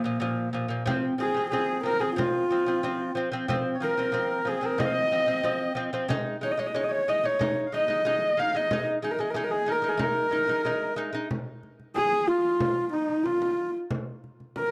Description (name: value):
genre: mongolian traditional, Mongolian folk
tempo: 92 BPM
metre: 4/4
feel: straight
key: unclear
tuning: A4 = 441 Hz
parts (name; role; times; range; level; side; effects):
- dark horsehead fiddle; melody; 0.0-14.7 s; Bb3 to F5; -29 LUFS; equal; none
- lute; arpeggios; 0.0-11.3 s; Bb2 to Eb4; -33 LUFS; equal; none
- clear cello; drone; 0.0-1.0 s; Bb2; -45 LUFS; equal; none
- frame drum; percussion; 0.2-14.7 s; none; -36 LUFS; equal; none
- melodica; second line; 1.2-14.7 s; Eb4 to F5; -36 LUFS; equal; tape echo
room: light reverb, small room ambience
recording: dry, close 1970s-style studio recording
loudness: -27 LUFS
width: mono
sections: 0.9-11.3 A section; 11.3-14.7 B section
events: none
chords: 0.0 Bb5; 0.9 F5; 6.1 Ab5; 11.3 N.C.